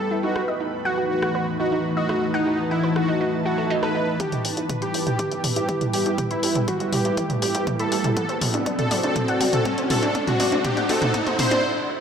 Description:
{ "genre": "melodic techno", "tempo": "121 BPM", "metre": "4/4", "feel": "straight", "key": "E minor", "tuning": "A4 = 440 Hz", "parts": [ { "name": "soft supersaw", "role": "melody", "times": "0.0-11.6 s", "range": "D#4 to C5", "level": "-26 LUFS", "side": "equal", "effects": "cassette tape, sidechain pumping, diffuse ambient delay" }, { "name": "dark analog pad", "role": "sustained chords", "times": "0.0-11.6 s", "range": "E3 to D5", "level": "-28 LUFS", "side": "equal", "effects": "chorus, sidechain pumping" }, { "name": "ethereal airy pad", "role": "texture", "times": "0.0-11.6 s", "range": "E3 to A5", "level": "-30 LUFS", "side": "equal", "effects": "ensemble chorus, built-in reverb, sidechain pumping" }, { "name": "analog pluck", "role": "arpeggios", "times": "0.1-11.6 s", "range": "D4 to B5", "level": "-29 LUFS", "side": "right 2 dB", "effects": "chorus, vintage 12-bit sampler grit, sidechain pumping, analog delay" }, { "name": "house drum kit", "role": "drums", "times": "0.4-11.6 s", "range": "hi-hat, rim click, toms", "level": "-26 LUFS", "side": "equal", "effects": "none" }, { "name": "swell and riser", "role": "sound effects", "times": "3.4-11.6 s", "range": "none", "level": "-30 LUFS", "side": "equal", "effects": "none" }, { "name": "electronic kick drum", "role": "drums", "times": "4.2-11.2 s", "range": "none", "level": "-32 LUFS", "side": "equal", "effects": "high-pass filter on kick" }, { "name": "plucky analog bass", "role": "bass", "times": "4.3-11.6 s", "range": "D1 to E2", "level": "-34 LUFS", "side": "equal", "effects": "none" } ], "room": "wet plate reverb, RT60 2.5 s", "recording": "dreamy mix soaked in reverb", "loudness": "-20 LUFS", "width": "side -7 dB against mid", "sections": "0.0-4.2 A section; 4.2-12.0 B section", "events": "filter sweep on synth pluck 0.0-4.2; filter sweep on analog synth pad 0.0-4.2; swell 3.4-4.2; build-up 4.2-12.0; drum fill 4.2-11.6; riser 6.3-11.6; stop 11.6-12.0", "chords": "0.2 B7/E; 4.2 Em; 8.2 D7/E" }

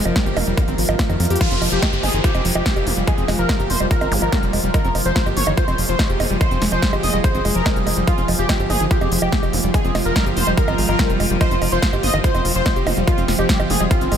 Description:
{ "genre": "psychedelic trance", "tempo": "144 BPM", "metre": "4/4", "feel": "straight", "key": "F minor", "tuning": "A4 = 439 Hz", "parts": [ { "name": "overtone-sweeping drone", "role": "sustained chords", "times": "0.0-14.2 s", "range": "F3 to Bb4", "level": "-26 LUFS", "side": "right 2 dB", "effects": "chorus, built-in reverb, vintage 12-bit sampler grit, sidechain pumping" }, { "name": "screaming distorted acid line", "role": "riff", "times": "0.0-14.2 s", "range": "Eb3 to G4", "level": "-25 LUFS", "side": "equal", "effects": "distortion, chorus, auto-pan, sidechain pumping, analog delay" }, { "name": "tight sequencer bass", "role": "bass", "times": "0.0-14.2 s", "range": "F1 to F2", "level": "-22 LUFS", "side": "equal", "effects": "none" }, { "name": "ethereal airy pad", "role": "texture", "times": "0.0-14.2 s", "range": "F4 to F5", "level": "-30 LUFS", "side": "right 1 dB", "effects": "ensemble chorus, built-in reverb, sidechain pumping" }, { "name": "big-room dance drum kit", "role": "drums", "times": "0.1-14.2 s", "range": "bongos, crash cymbal, hi-hat, snare drum", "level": "-24 LUFS", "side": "right 2 dB", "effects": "none" }, { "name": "electronic kick drum", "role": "drums", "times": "0.2-14.0 s", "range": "none", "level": "-19 LUFS", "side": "equal", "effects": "none" }, { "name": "wide unison lead", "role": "melody", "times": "1.4-14.1 s", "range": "F4 to Eb5", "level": "-24 LUFS", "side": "left 1 dB", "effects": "phaser, sidechain pumping, ping-pong delay" }, { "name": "downlifter and zap", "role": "sound effects", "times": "1.4-4.7 s", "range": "none", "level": "-29 LUFS", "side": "equal", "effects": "none" } ], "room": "light reverb, digital ambience", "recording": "none", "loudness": "-16 LUFS", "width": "side -8 dB against mid", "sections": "0.0-1.4 A section; 1.4-14.2 B section", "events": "drum fill 1.2; drop 1.4-14.2", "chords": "0.0 F5" }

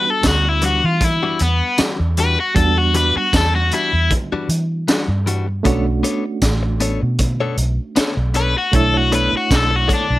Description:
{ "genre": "straight-eighth soul blues", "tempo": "78 BPM", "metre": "4/4", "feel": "swing 54% on 16ths", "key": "unclear", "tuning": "A4 = 439 Hz", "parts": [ { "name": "crunchy overdriven guitar", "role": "melody", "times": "0.0-10.2 s", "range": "B3 to B4", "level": "-17 LUFS", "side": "left 3 dB", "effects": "none" }, { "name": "barky reed electric piano", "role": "accompaniment", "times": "0.0-10.2 s", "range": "G3 to C#5", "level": "-25 LUFS", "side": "right 4 dB", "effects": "fast tremolo" }, { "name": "direct-recorded clean electric guitar", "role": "stabs", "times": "0.0-10.1 s", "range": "E3 to C#5", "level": "-24 LUFS", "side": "left 4 dB", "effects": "none" }, { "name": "vintage muted fingered electric bass", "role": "bass", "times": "0.2-10.2 s", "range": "A1 to E3", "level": "-19 LUFS", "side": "equal", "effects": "none" }, { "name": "crunchy breakbeat drum kit", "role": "drums", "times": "0.2-10.1 s", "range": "hi-hat, kick drum, snare drum, tambourine", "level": "-19 LUFS", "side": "equal", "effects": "none" } ], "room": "light reverb", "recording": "none", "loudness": "-15 LUFS", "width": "side -16 dB against mid", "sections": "0.0-10.2 A section", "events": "overdriven electric guitar solo 0.0-10.2", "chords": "0.0 Em9; 5.7 Bm9" }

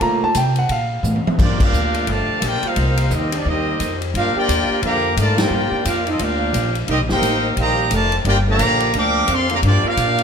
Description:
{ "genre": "jazz, big band swing", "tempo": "175 BPM", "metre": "4/4", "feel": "swing 62% on 8ths", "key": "G minor", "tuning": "A4 = 440 Hz", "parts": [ { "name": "warm grand piano", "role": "accompaniment", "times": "0.0-1.3 s", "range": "A3 to Bb5", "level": "-19 LUFS", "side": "right 1 dB", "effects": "none" }, { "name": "upright bass", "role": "bass", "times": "0.0-10.2 s", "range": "F1 to D3", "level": "-21 LUFS", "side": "equal", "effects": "none" }, { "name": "swinging big-band drum kit", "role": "drums", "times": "0.0-10.2 s", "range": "crash cymbal, hi-hat, kick drum, ride cymbal, snare drum, toms", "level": "-24 LUFS", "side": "left 1 dB", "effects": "none" }, { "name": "bright trumpet section", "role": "melody", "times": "1.4-10.2 s", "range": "Bb3 to D6", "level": "-20 LUFS", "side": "equal", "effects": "none" }, { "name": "warm trombone section", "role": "second line", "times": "1.4-10.2 s", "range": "D3 to G4", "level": "-23 LUFS", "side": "right 2 dB", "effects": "none" } ], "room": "light reverb", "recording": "none", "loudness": "-16 LUFS", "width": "side -7 dB against mid", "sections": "0.0-1.4 A section; 1.4-10.2 B section", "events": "grand piano solo 0.0-1.4; drum fill 1.0-1.4; band accent 1.6, 5.3", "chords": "0.0 Gm7; 2.8 Cm7; 4.1 Gm7; 6.9 Cm7; 8.3 Gm7" }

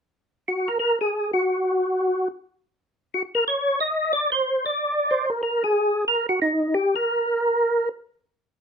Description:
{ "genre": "jazz", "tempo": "182 BPM", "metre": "4/4", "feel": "swing 63% on 8ths", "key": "unclear", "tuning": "A4 = 442 Hz", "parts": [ { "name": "percussive tonewheel organ", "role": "solo", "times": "0.5-7.9 s", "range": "Eb4 to Eb5", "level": "-20 LUFS", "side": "equal", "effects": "slow rotary speaker, chorus vibrato" } ], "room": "light reverb", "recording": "none", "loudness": "-21 LUFS", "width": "side -6 dB against mid", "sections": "0.1-5.4 A section; 5.4-8.6 B section", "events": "none", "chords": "none" }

